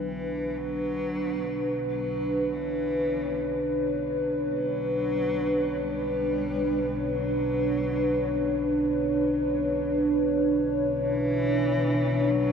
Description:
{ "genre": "dark ambient drone", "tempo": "free time", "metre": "none", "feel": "none", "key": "B minor", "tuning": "A4 = 444 Hz", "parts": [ { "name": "dark cello", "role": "melody", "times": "0.0-12.5 s", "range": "E3 to G3", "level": "-37 LUFS", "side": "left 1 dB", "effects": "diffuse ambient delay" }, { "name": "dark analog pad", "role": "sustained chords", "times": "0.0-12.5 s", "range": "D4 to C#5", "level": "-25 LUFS", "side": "equal", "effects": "chorus" }, { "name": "gamelan-type bossed gongs", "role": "arpeggios", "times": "0.0-4.5 s", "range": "F#3", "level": "-45 LUFS", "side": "left 2 dB", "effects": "none" }, { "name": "analog drone", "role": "drone", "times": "0.0-12.5 s", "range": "B1 to B2", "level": "-35 LUFS", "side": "equal", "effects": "wide subtle chorus" } ], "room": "wet huge ambient reverb, RT60 8.3 s", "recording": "dark, warm production", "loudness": "-24 LUFS", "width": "side -6 dB against mid", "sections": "0.0-12.5 A section", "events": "fade-in on synth drone 0.0-12.5; fade-in on cello 0.0-12.5", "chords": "0.0 Bm" }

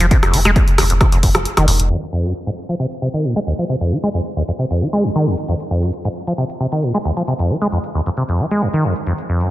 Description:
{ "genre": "driving peak-time techno", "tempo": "134 BPM", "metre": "4/4", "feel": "straight", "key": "F phrygian", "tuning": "A4 = 440 Hz", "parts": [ { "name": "acid bass, saw", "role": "riff", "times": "0.0-9.5 s", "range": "Eb2 to Ab3", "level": "-17 LUFS", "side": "equal", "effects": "sidechain pumping, digital delay" }, { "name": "saturated sub bass", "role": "bass", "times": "0.0-1.9 s", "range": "F1", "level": "-17 LUFS", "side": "equal", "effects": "tube saturation, sidechain pumping, low-pass filter" }, { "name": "punchy analog drum machine", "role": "drums", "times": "0.0-9.5 s", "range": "crash cymbal, hi-hat, rim click", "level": "-19 LUFS", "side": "equal", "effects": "studio ambience, sidechain pumping on hats, sidechain pumping on cymbals" }, { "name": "electronic kick drum", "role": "drums", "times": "0.1-1.3 s", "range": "none", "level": "-14 LUFS", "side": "equal", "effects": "studio ambience" } ], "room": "moderate lush hall reverb, RT60 1.8 s, digital ambience", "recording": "low-pass filter", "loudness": "-15 LUFS", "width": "side -15 dB against mid", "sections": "0.0-1.9 A section; 1.9-9.5 B section", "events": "filter sweep on acid bass 0.0-1.9, 1.9-9.5; kick drops out 1.5-1.9; filter sweep 1.9-9.5", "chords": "none" }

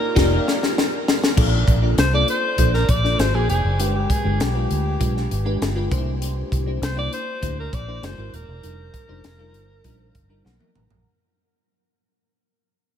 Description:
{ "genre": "polished 1980s jazz-funk pop", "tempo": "99 BPM", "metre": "4/4", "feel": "straight", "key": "Bb major", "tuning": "A4 = 436 Hz", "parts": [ { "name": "breathy alto saxophone", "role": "melody", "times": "0.0-10.5 s", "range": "G4 to D5", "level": "-26 LUFS", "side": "equal", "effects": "tape echo" }, { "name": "bell-like FM electric piano", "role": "accompaniment", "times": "0.0-11.1 s", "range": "F#3 to A#5", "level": "-26 LUFS", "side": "left 2 dB", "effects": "phaser, wide subtle chorus" }, { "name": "vintage muted fingered electric bass", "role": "bass", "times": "0.2-11.0 s", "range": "Eb1 to D2", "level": "-22 LUFS", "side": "equal", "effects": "none" }, { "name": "crisp fusion drum kit", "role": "drums", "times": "0.2-11.0 s", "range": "crash cymbal, hi-hat, kick drum, snare drum, toms", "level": "-22 LUFS", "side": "left 1 dB", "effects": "none" } ], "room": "light reverb, small room ambience", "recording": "none", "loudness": "-18 LUFS", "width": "side -9 dB against mid", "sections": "0.0-1.4 A section; 1.4-11.1 B section", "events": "band accent 0.0-1.4; drum fill 0.2-1.4, 10.5-11.1; fade-out 1.4-11.1; FM electric piano fill 10.2-11.1", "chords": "0.0 F13sus4; 0.8 N.C.; 1.4 Bbmaj7; 3.2 Ab9; 3.8 G7b9; 5.9 C9; 8.0 Gb9; 8.6 F13sus4; 10.5 Bmaj7" }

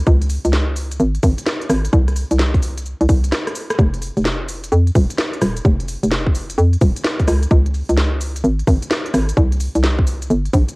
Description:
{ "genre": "UK garage, two-step garage", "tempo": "129 BPM", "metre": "4/4", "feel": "swing 65% on 16ths", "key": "unclear", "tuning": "A4 = 440 Hz", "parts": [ { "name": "hollow knocking FM bass", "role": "bass", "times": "0.0-10.6 s", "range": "Eb1 to F2", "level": "-16 LUFS", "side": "equal", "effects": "none" }, { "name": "electronic kick drum", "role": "drums", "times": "0.1-10.7 s", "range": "none", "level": "-16 LUFS", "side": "equal", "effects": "none" }, { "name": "garage drum kit", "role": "drums", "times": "0.1-10.8 s", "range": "cabasa, hi-hat, rim click, snare drum", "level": "-23 LUFS", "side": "equal", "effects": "none" } ], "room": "little or no reverb", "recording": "home recording on cassette", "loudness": "-15 LUFS", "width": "side -28 dB against mid", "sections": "0.0-10.8 A section", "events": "break 3.3-3.8; drum fill 3.3-3.8", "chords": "none" }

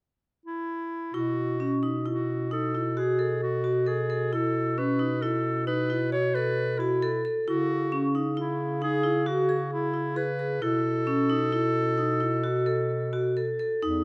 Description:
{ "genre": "contemporary instrumental, chamber music in an uneven meter", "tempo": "133 BPM", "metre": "7/4", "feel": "straight", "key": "B mixolydian", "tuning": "A4 = 444 Hz", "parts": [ { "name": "clear clarinet", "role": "melody", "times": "0.5-13.4 s", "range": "E4 to C#5", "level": "-33 LUFS", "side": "equal", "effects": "none" }, { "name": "vibraphone with hard mallets", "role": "arpeggios", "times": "1.1-14.0 s", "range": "C#4 to A4", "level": "-30 LUFS", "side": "equal", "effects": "none" }, { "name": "mellow bass clarinet", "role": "bass", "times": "1.1-14.0 s", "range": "E2 to C#3", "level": "-33 LUFS", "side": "equal", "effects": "none" } ], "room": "light reverb", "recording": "none", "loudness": "-27 LUFS", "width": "mono", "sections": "0.0-1.1 A section; 1.1-13.8 B section", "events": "none", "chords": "0.0 N.C.; 1.1 B7sus4; 7.5 C#m; 10.6 B7sus4" }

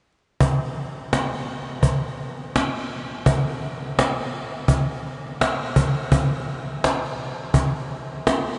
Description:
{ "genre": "hip hop", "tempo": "84 BPM", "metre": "4/4", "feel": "swing 58% on 16ths", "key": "none", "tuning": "none", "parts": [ { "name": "cajon", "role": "drums", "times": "0.4-8.5 s", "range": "none", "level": "-24 LUFS", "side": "equal", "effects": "none" } ], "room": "wet huge ambient reverb, RT60 7.3 s", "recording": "dreamy mix soaked in reverb, vinyl crackle, nothing above 10.4 kHz", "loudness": "-24 LUFS", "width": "mono", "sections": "0.4-8.6 A section", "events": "none", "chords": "none" }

